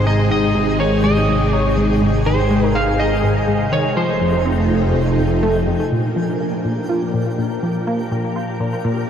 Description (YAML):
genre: ambient, sequencer-driven space music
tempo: 123 BPM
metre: 4/4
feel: straight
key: Ab major, Bb major from 5.9 s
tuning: A4 = 438 Hz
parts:
  - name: lightly driven lead guitar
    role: melody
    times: 0.0-4.4 s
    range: C5 to F5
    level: -23 LUFS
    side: right 1 dB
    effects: wide subtle chorus, ping-pong delay
  - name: phased string machine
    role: sustained chords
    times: 0.0-9.1 s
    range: Bb2 to Bb4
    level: -20 LUFS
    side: equal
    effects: ensemble chorus, phaser
  - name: fat analog bass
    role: bass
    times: 0.0-5.9 s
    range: F1 to Ab1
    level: -20 LUFS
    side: equal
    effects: tube saturation
  - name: twinkling granular texture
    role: texture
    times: 0.0-9.1 s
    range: G4 to G5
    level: -30 LUFS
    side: equal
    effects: built-in reverb
  - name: tight sequenced synth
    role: riff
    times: 0.1-9.1 s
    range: F2 to F4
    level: -21 LUFS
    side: left 1 dB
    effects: chorus, cassette tape, ping-pong delay
room: wet huge ambient reverb, RT60 8.0 s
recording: dreamy mix soaked in reverb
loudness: -15 LUFS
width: side -8 dB against mid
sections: 0.0-5.9 A section; 5.9-9.1 B section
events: none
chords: 0.0 Ab; 4.0 F7; 5.9 Bb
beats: | 0.07 0.55 1.04 1.53 | 2.02 2.50 2.99 3.48 | 3.97 4.46 4.94 5.43 | 5.92 6.41 6.89 7.38 | 7.87 8.36 8.85